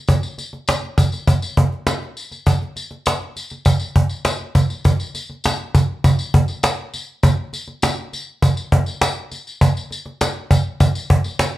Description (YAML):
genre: pop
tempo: 101 BPM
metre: 4/4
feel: straight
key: none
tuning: none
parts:
  - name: cajon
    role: drums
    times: 0.1-11.5 s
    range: none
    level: -16 LUFS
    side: equal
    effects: none
  - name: tambourine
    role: percussion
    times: 0.1-11.5 s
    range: none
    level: -30 LUFS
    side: left 3 dB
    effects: none
room: moderate studio reverb, RT60 0.7 s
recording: dark, warm production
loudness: -17 LUFS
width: side -16 dB against mid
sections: 0.0-4.9 A section; 4.9-11.6 B section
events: none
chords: none